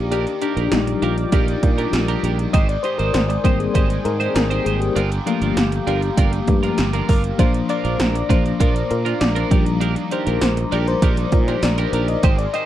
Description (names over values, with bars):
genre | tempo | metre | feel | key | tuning
1980s-style pop | 99 BPM | 4/4 | straight | unclear | A4 = 439 Hz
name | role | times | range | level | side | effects
FM electric piano with tremolo | accompaniment | 0.0-12.7 s | F3 to Eb5 | -22 LUFS | left 7 dB | none
cranked stack guitar | accompaniment | 0.0-12.7 s | G2 to Eb4 | -32 LUFS | right 3 dB | overdrive, analog chorus
sweeping resonant pad | sustained chords | 0.0-12.7 s | Bb4 to Eb6 | -31 LUFS | right 2 dB | chorus, phaser
sustaining fretless electric bass | bass | 0.0-12.5 s | G1 to Bb2 | -22 LUFS | right 1 dB | none
twelve-string electric guitar | riff | 0.1-12.7 s | D4 to C5 | -26 LUFS | right 7 dB | wide subtle chorus, slapback echo
80s electronic pad drums | drums | 0.1-12.7 s | hi-hat, kick drum, snare drum, tambourine | -18 LUFS | right 1 dB | overdrive
room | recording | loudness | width
little or no reverb | dry, close 1970s-style studio recording | -16 LUFS | side -12 dB against mid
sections
0.0-12.7 A section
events
FM electric piano solo 0.0-12.7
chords
0.0 Ebmaj7/Bb; 2.5 Abmaj7; 5.0 Gm7; 7.4 Bb; 9.5 Ebmaj7/Bb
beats
| 0.12 0.72 1.33 1.94 | 2.54 3.15 3.75 4.36 | 4.97 5.57 6.18 6.78 | 7.39 8.00 8.60 9.21 | 9.81 10.42 11.03 11.63 | 12.24